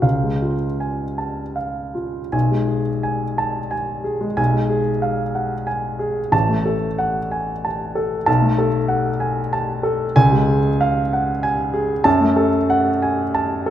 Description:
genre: classical, romantic character piece for solo piano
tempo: 75-98 BPM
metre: 3/4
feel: rubato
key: F# minor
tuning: A4 = 440 Hz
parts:
  - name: warm baby grand piano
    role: solo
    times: 0.0-13.7 s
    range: A1 to A5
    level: -17 LUFS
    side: equal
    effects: none
room: wet recital hall reverb, RT60 1.5 s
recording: none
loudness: -17 LUFS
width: side -11 dB against mid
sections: 0.0-2.3 A section; 2.3-13.7 A section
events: none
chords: 0.0 C#; 2.3 G#m/B; 4.4 Fdim/Cb; 6.3 F#m/A; 8.3 B5; 10.2 C#; 12.1 F#m

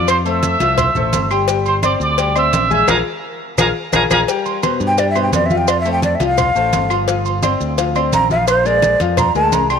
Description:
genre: latin, salsa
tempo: 172 BPM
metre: 4/4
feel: straight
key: C major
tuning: A4 = 443 Hz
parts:
  - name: bright trumpet section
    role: melody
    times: 0.0-4.2 s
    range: C5 to E6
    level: -18 LUFS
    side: right 2 dB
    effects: none
  - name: clear concert grand piano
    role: accompaniment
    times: 0.0-9.8 s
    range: B2 to Ab5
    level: -20 LUFS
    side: left 10 dB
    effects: none
  - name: modern bright fingered electric bass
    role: bass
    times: 0.0-9.8 s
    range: G1 to G2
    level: -21 LUFS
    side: right 1 dB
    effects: none
  - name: agogo bells and timbales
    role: percussion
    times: 0.1-9.8 s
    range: none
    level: -23 LUFS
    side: right 13 dB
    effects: none
  - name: claves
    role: percussion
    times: 0.1-9.8 s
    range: none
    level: -28 LUFS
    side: left 10 dB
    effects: none
  - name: congas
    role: percussion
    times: 0.1-9.8 s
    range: none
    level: -24 LUFS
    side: right 1 dB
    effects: none
  - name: cowbell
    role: percussion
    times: 0.1-9.7 s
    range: none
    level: -25 LUFS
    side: left 10 dB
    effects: none
  - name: maracas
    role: percussion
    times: 0.1-9.8 s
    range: none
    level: -28 LUFS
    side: right 16 dB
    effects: none
  - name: mellow hollow jazz flute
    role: melody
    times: 4.9-9.8 s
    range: C5 to C6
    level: -16 LUFS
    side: right 1 dB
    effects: none
room: moderate plate reverb, RT60 2.7 s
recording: 1960s-style stereo with parts hard left and right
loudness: -13 LUFS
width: side -7 dB against mid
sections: 0.0-4.3 A section; 4.3-9.8 B section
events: band accent 2.9-4.3; drum fill 3.4-4.3; flute solo 4.3-9.8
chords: 0.1 Fmaj7; 1.5 Gsus4; 2.9 Bb5; 4.3 C5; 5.7 F; 7.1 G7sus4; 8.5 Bb7

